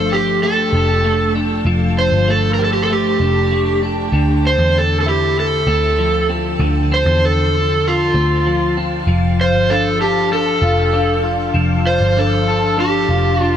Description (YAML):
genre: dream pop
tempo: 97 BPM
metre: 4/4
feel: straight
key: unclear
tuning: A4 = 440 Hz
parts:
  - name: overdriven slide guitar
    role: melody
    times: 0.0-13.6 s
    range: F4 to C5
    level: -17 LUFS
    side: right 1 dB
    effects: tape echo
  - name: clean electric guitar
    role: arpeggios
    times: 0.0-13.6 s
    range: D3 to A4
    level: -19 LUFS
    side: left 2 dB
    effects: ensemble chorus, tape echo
  - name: vintage muted picked electric bass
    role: bass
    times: 0.0-13.6 s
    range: F1 to E2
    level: -18 LUFS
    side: equal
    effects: none
room: moderate shimmer reverb, RT60 4.3 s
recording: none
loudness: -13 LUFS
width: side -9 dB against mid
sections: 0.0-13.6 A section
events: none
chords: 0.0 F69; 4.1 Dm9; 9.1 F69